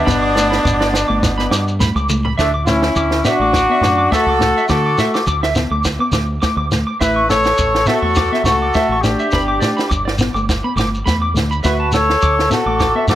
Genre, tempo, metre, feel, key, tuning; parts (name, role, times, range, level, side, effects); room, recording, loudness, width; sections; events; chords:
highlife guitar band; 104 BPM; 4/4; swing 55% on 16ths; A4 = 440 Hz
bright horn section; melody; 0.0-13.2 s; A3 to C#5; -16 LUFS; left 1 dB
edgy tenor saxophone; second line; 0.0-1.8 s; B2; -27 LUFS; left 2 dB
mellow electric guitar; accompaniment; 0.1-13.2 s; A3 to B3; -24 LUFS; left 2 dB; wide subtle chorus
electric guitar at the edge of break-up; arpeggios; 0.1-13.2 s; D5 to D6; -21 LUFS; right 2 dB; lush chorus, slapback echo
deep dub fingered electric bass; bass; 0.1-13.2 s; G1 to D3; -21 LUFS; equal
compact cocktail drum kit; drums; 0.1-13.2 s; kick drum, snare drum, toms; -21 LUFS; right 1 dB
shekere; percussion; 0.1-13.2 s; -22 LUFS; equal
moderate spring reverb, RT60 2.5 s; -13 LUFS; side -12 dB against mid
0.0-2.4 A section; 2.4-13.2 B section
drum fill 1.8-2.4
0.1 G; 2.4 A; 9.3 G; 11.6 Dadd9